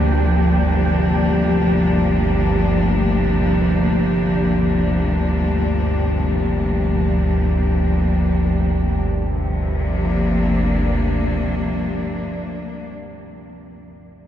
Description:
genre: dark ambient drone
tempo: free time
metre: none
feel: none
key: G minor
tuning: A4 = 440 Hz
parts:
  - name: clear studio cello section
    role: sustained chords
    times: 0.0-12.9 s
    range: G2 to D4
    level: -19 LUFS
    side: left 1 dB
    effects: none
  - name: organ-like drone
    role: drone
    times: 0.0-12.2 s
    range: G1 to D2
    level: -20 LUFS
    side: equal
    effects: ensemble chorus, built-in reverb
  - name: wind-like tuned noise texture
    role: texture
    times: 0.0-9.1 s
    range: G4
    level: -27 LUFS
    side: right 1 dB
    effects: built-in reverb
room: wet cathedral reverb, RT60 5.8 s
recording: dark, warm production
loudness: -16 LUFS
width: side -10 dB against mid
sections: 0.0-9.1 A section; 9.1-13.9 B section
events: none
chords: 0.0 Gm

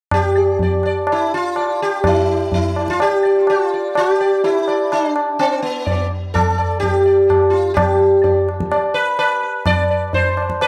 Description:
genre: indian classical, Hindustani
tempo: 126 BPM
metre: 4/4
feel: straight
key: D raga bageshri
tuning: A4 = 440 Hz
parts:
  - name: sitar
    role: melody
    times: 0.1-10.7 s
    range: B3 to D5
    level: -18 LUFS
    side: equal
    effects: tape echo
  - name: tabla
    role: percussion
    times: 0.1-10.7 s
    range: none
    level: -22 LUFS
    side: equal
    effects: none
room: light reverb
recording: dry, gritty hardware recording, transformer saturation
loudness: -17 LUFS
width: mono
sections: 0.1-10.7 A section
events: none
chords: none

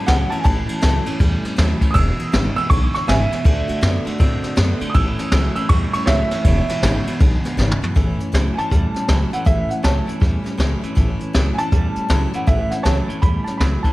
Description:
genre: rockabilly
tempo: 160 BPM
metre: 4/4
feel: swing 63% on 8ths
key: A major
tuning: A4 = 440 Hz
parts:
  - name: warm upright piano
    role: melody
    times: 0.0-13.9 s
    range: C#5 to E6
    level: -24 LUFS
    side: right 2 dB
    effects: slapback echo
  - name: picked steel-string acoustic guitar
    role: accompaniment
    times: 0.0-13.9 s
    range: E2 to F#4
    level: -28 LUFS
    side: left 3 dB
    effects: none
  - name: electric guitar at the edge of break-up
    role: riff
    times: 0.0-13.9 s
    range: E2 to C4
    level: -26 LUFS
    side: right 3 dB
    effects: spring reverb
  - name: upright bass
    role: bass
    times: 0.1-13.9 s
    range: E1 to A2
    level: -19 LUFS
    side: equal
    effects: none
  - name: jazz brush drum kit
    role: drums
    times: 0.1-13.9 s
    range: hi-hat, kick drum, ride cymbal, snare drum, toms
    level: -20 LUFS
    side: equal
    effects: none
room: light reverb, studio ambience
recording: none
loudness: -16 LUFS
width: side -18 dB against mid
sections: 0.0-8.0 A section; 8.0-13.9 B section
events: upright piano solo 0.0-8.0; drum fill 7.6-8.0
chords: 0.0 A; 1.9 E; 3.5 D; 5.0 A; 6.5 E; 8.0 A

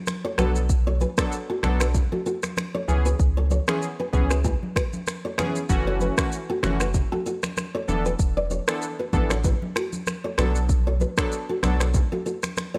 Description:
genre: afrobeats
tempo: 96 BPM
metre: 4/4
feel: swing 55% on 16ths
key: unclear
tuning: A4 = 441 Hz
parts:
  - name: deep house drum kit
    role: drums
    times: 0.1-12.7 s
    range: finger snaps, kick drum, rim click, shaker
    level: -28 LUFS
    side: equal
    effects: none
  - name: congas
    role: percussion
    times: 0.1-12.7 s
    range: none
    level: -35 LUFS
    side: equal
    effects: none
  - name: nylon-string guitar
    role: riff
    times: 0.2-12.8 s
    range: E4 to D5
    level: -31 LUFS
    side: equal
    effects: slapback echo
  - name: warm analog keys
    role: accompaniment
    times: 0.4-11.8 s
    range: E3 to A4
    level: -31 LUFS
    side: equal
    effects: chorus
  - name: warm sub bass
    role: bass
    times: 0.4-12.0 s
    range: E1 to C#2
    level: -26 LUFS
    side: equal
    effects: none
room: little or no reverb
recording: none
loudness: -24 LUFS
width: mono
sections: 0.0-12.8 A section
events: none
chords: 0.4 Bm7; 2.9 C#m7; 5.7 F#m7; 7.9 E7sus4; 10.4 Bm7

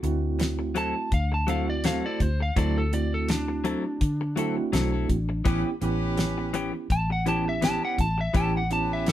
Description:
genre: straight-eighth soul blues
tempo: 83 BPM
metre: 4/4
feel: swing 56% on 16ths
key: D mixolydian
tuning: A4 = 442 Hz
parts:
  - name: tine electric piano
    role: accompaniment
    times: 0.0-9.1 s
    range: A3 to G4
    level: -30 LUFS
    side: right 6 dB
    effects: medium tremolo
  - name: direct-recorded clean electric guitar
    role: stabs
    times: 0.0-9.1 s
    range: E3 to A4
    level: -30 LUFS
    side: left 5 dB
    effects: none
  - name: vintage muted fingered electric bass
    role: bass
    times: 0.0-9.1 s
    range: A1 to D3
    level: -28 LUFS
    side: left 1 dB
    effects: none
  - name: damped 70s drum kit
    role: drums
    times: 0.0-9.1 s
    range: hi-hat, kick drum, snare drum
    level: -26 LUFS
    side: equal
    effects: none
  - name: lightly driven lead guitar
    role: melody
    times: 0.8-9.1 s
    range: D4 to A5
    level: -30 LUFS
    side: equal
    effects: none
  - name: clear horn section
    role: sustained chords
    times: 5.5-9.1 s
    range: C#4 to B4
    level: -36 LUFS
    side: left 1 dB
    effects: none
room: light reverb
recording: band playing live in one room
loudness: -23 LUFS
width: side -12 dB against mid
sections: 0.0-9.1 A section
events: lead electric guitar solo 0.0-9.1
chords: 0.0 D9; 5.5 A9

